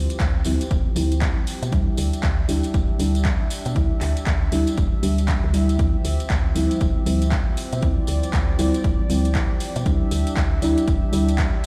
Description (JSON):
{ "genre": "deep house", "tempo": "118 BPM", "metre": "4/4", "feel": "swing 61% on 16ths", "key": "D minor", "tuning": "A4 = 436 Hz", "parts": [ { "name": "warm analog pad", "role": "sustained chords", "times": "0.0-11.7 s", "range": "F3 to E5", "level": "-34 LUFS", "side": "equal", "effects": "chorus, sidechain pumping" }, { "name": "deep mellow chord stab", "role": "stabs", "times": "0.0-11.7 s", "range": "F3 to G4", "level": "-28 LUFS", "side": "equal", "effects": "chorus, sidechain pumping, digital delay" }, { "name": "woody FM bass", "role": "bass", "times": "0.0-11.5 s", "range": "D1 to B2", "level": "-26 LUFS", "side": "equal", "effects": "sidechain pumping" }, { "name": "deep house drum kit", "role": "drums", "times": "0.1-11.7 s", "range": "handclaps, hi-hat", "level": "-34 LUFS", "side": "equal", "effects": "overdrive" }, { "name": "tambourine", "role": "percussion", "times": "0.1-11.5 s", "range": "none", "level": "-40 LUFS", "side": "equal", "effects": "none" }, { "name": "electronic kick drum", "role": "drums", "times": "0.2-11.5 s", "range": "none", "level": "-24 LUFS", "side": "equal", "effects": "none" } ], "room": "light reverb, digital ambience", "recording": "played on a big sound system in a bare room, stone room reverb", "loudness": "-21 LUFS", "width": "mono", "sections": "0.0-11.7 A section", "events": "filter sweep on synth stab 0.0-11.7", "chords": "0.0 Dm11; 1.7 Em7/D; 5.8 Dm11; 9.9 Em7/D" }